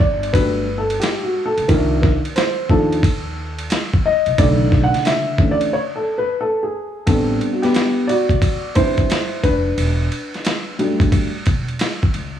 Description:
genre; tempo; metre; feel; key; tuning
hip hop, jazz-hop; 89 BPM; 4/4; swing 65% on 16ths; A dorian; A4 = 441 Hz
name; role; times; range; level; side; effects
dark upright piano; accompaniment; 0.0-11.3 s; C#3 to F#5; -18 LUFS; left 1 dB; none
upright bass; bass; 0.0-12.4 s; E1 to Eb2; -23 LUFS; equal; none
dusty soul sampler-style drum kit; drums; 0.0-12.3 s; hi-hat, kick drum, ride cymbal, snare drum; -19 LUFS; equal; overdrive
room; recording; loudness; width
light reverb, small room ambience; none; -16 LUFS; side -10 dB against mid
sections
0.0-7.1 A section; 7.1-12.4 B section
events
upright piano solo 0.0-7.1, 7.1-12.4; break 5.7-7.1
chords
0.0 Em11 (rootless); 1.7 Cm11; 4.4 Bm11; 7.1 Am11; 9.8 Em11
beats
0.34 1.01 | 1.69 2.36 3.04 3.71 | 4.39 5.06 5.73 6.41 | 7.08 7.76 8.43 9.11 | 9.78 10.45 11.13 11.80

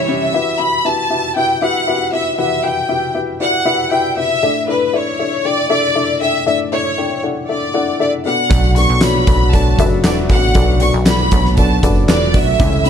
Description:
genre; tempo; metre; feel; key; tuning
piano-driven pop; 117 BPM; 4/4; straight; unclear; A4 = 439 Hz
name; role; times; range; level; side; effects
rich studio violin section; melody; 0.0-12.9 s; B4 to C#6; -17 LUFS; equal; digital delay
dark upright piano; accompaniment; 0.0-12.9 s; A2 to G5; -19 LUFS; left 4 dB; none
direct-recorded clean electric guitar; riff; 0.0-0.3, 8.5-12.9 s; B2 to F#4; -24 LUFS; right 10 dB; none
mellow French horn section; second line; 8.5-12.9 s; F#3 to A4; -23 LUFS; left 7 dB; none
plucky analog bass; bass; 8.5-12.9 s; E1 to C#2; -16 LUFS; equal; none
huge arena drum kit; drums; 8.5-12.9 s; handclaps, hi-hat, kick drum, snare drum; -15 LUFS; equal; none
tambourine; percussion; 8.5-12.9 s; none; -35 LUFS; right 13 dB; none
room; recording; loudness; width
light reverb; dark, warm production; -13 LUFS; side -8 dB against mid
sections
0.3-12.9 A section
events
break 0.0-0.3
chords
0.3 Emadd9; 4.4 Asus4; 8.3 Bm7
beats
| 0.33 0.84 1.35 1.86 | 2.38 2.89 3.40 3.91 | 4.42 4.93 5.44 5.95 | 6.46 6.97 7.49 8.00 | 8.51 9.02 9.53 10.04 | 10.55 11.06 11.57 12.09 | 12.60

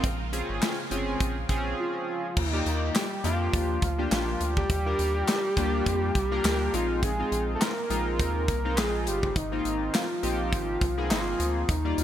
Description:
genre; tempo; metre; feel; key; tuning
early-eighties boogie funk; 103 BPM; 4/4; swing 56% on 16ths; Eb major; A4 = 440 Hz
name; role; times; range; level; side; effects
chorused polysynth; accompaniment; 0.0-12.0 s; G3 to D5; -31 LUFS; left 2 dB; none
phased string machine; sustained chords; 0.0-2.3, 11.7-12.0 s; Db3 to D5; -39 LUFS; equal; ensemble chorus, phaser
rubbery square bass; bass; 0.0-12.0 s; G1 to F2; -30 LUFS; equal; none
modern studio drum kit; drums; 0.0-12.0 s; crash cymbal, handclaps, hi-hat, kick drum, snare drum; -29 LUFS; equal; none
fat analog lead; melody; 1.8-12.0 s; Eb4 to Bb4; -29 LUFS; equal; none
room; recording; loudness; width
light reverb, studio reverb; bright 1980s-style digital production; -25 LUFS; side -11 dB against mid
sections
0.0-2.4 A section; 2.4-12.0 B section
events
break 1.8-2.4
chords
0.0 Bbm7; 2.4 Ebmaj9; 6.7 Bb7sus4; 9.4 Ab6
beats
| 0.04 0.62 1.20 1.78 | 2.37 2.95 3.53 4.12 | 4.70 5.28 5.86 6.45 | 7.03 7.61 8.19 8.78 | 9.36 9.94 10.52 11.11 | 11.69

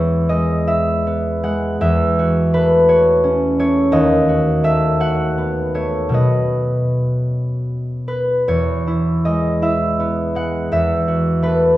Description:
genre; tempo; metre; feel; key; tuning
classical, solo harp piece; 50-58 BPM (dotted quarters); 6/8; rubato; E major; A4 = 442 Hz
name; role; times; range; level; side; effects
concert harp; solo; 0.0-11.8 s; D#2 to F#5; -15 LUFS; equal; none
room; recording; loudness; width
wet recital hall reverb, RT60 1.6 s; recorded in a church or concert hall; -15 LUFS; side -15 dB against mid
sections
0.0-11.8 A section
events
none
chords
0.0 E; 1.8 F#m7/E; 3.9 B7/D#; 6.2 B; 8.5 E; 10.7 F#m7/E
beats
0.69 | 1.82 2.89 | 3.94 5.01 | 6.15 7.31 | 8.49 9.64 | 10.73

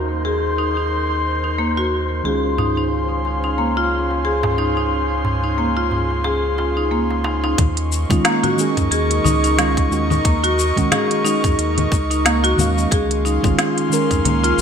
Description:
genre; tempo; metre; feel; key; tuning
organic downtempo; 90 BPM; 4/4; swing 57% on 16ths; Eb dorian; A4 = 440 Hz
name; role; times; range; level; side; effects
muted felt-like synth keys; accompaniment; 0.0-14.6 s; Eb3 to F5; -24 LUFS; right 2 dB; chorus, sidechain pumping, digital delay
airy breathy pad; sustained chords; 0.0-14.6 s; Db4 to Db6; -23 LUFS; left 1 dB; chorus, sidechain pumping
marimba with medium mallets; arpeggios; 0.0-14.6 s; Bb3 to Ab4; -21 LUFS; equal; low-pass filter, digital delay
warm sub bass; bass; 0.0-14.6 s; Ab1 to Gb2; -23 LUFS; equal; tube saturation, sidechain pumping
downlifter; sound effects; 0.0-2.2 s; none; -43 LUFS; left 1 dB; none
wind-like tuned noise texture; texture; 0.0-7.6 s; C5; -30 LUFS; equal; built-in reverb
darbuka; percussion; 2.6-7.6 s; none; -27 LUFS; right 2 dB; none
electronic kick drum; drums; 7.6-14.2 s; none; -19 LUFS; equal; none
organic electronic drum kit; drums; 7.6-14.6 s; congas, hi-hat, shaker, snare drum; -21 LUFS; left 2 dB; low-pass filter on hats, low-pass filter on perc, low-pass filter on snare
room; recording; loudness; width
moderate plate reverb, RT60 1.9 s; bright 1980s-style digital production; -16 LUFS; side -7 dB against mid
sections
0.0-7.6 A section; 7.6-14.6 B section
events
none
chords
0.0 Ebm7; 2.2 Dbmaj7; 7.6 Ebm7; 12.9 Dbmaj7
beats
0.25 0.92 1.58 | 2.25 2.92 3.58 4.25 | 4.92 5.58 6.25 6.92 | 7.58 8.25 8.91 9.58 | 10.25 10.91 11.58 12.25 | 12.91 13.58 14.25

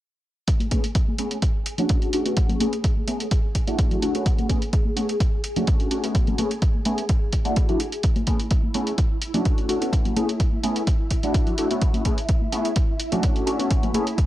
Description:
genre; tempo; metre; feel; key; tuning
filtered disco house; 127 BPM; 4/4; straight; A major; A4 = 440 Hz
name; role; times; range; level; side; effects
phased string machine; sustained chords; 0.5-14.3 s; E4 to G#5; -33 LUFS; equal; ensemble chorus, phaser, sidechain pumping, low-pass filter
electronic hi-hat; drums; 0.5-14.3 s; none; -32 LUFS; right 1 dB; sidechain pumping on hats
electronic kick drum; drums; 0.5-14.3 s; none; -21 LUFS; equal; none
tambourine and congas; percussion; 0.5-14.3 s; none; -29 LUFS; left 2 dB; sidechain pumping on perc, low-pass filter on perc
funky polysynth comp; accompaniment; 0.7-14.1 s; A3 to G#4; -25 LUFS; equal; chorus, phaser, sidechain pumping, low-pass filter
room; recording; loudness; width
little or no reverb; dry, gritty hardware recording; -20 LUFS; side -14 dB against mid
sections
0.5-14.3 A section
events
filter sweep 0.5-14.3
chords
0.5 Amaj9; 1.4 Dmaj7; 2.4 Amaj9; 3.3 E9sus4; 4.3 Amaj9; 5.2 Dmaj7; 6.1 Amaj9; 7.1 E9sus4; 8.0 Amaj9; 9.0 Dmaj7; 9.9 Amaj9; 10.9 E9sus4; 11.8 Amaj9; 12.8 Dmaj7; 13.7 Amaj9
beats
| 0.48 0.95 1.43 1.90 | 2.37 2.84 3.31 3.79 | 4.26 4.73 5.20 5.68 | 6.15 6.62 7.09 7.57 | 8.04 8.51 8.98 9.46 | 9.93 10.40 10.87 11.35 | 11.82 12.29 12.76 13.24 | 13.71 14.18

